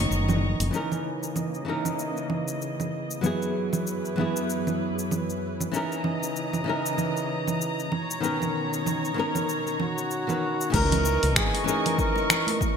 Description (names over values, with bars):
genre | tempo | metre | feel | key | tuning
sunset chillout | 96 BPM | 4/4 | swing 58% on 16ths | C# dorian | A4 = 439 Hz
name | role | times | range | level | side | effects
mellow flugelhorn | melody | 0.0-0.1, 9.8-12.6 s | F#4 to C#5 | -29 LUFS | equal | digital delay
flamenco guitar | accompaniment | 0.0-12.8 s | D#3 to B4 | -29 LUFS | left 1 dB | auto-pan, digital delay
warm chamber string section | sustained chords | 0.0-12.8 s | F#2 to C#6 | -31 LUFS | equal | low-pass filter
woody fretless electric bass | bass | 0.0-0.7, 10.7-11.5 s | F#1 to C#2 | -25 LUFS | equal | tube saturation
deep house drum kit | drums | 0.1-12.8 s | cabasa, congas, crash cymbal, finger snaps, hi-hat | -29 LUFS | right 3 dB | gated reverb
congas | percussion | 0.3-0.4, 10.7-12.8 s | none | -34 LUFS | right 2 dB | none
electronic kick drum | drums | 10.7-12.8 s | none | -28 LUFS | equal | none
room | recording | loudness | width
moderate lush hall reverb, RT60 1.8 s, small room ambience | bright 1980s-style digital production | -24 LUFS | side -7 dB against mid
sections
0.7-10.7 A section; 10.7-12.8 B section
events
filter sweep on string section 0.7-10.7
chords
0.0 Bmaj9; 0.7 C#m69; 3.2 F#9sus4; 5.7 C#m69; 7.9 Bmaj9; 10.7 C#m69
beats
0.11 | 0.74 1.36 1.99 2.61 | 3.24 3.86 4.49 5.11 | 5.74 6.36 6.99 7.61 | 8.24 8.86 9.49 10.11 | 10.74 11.36 11.99 12.61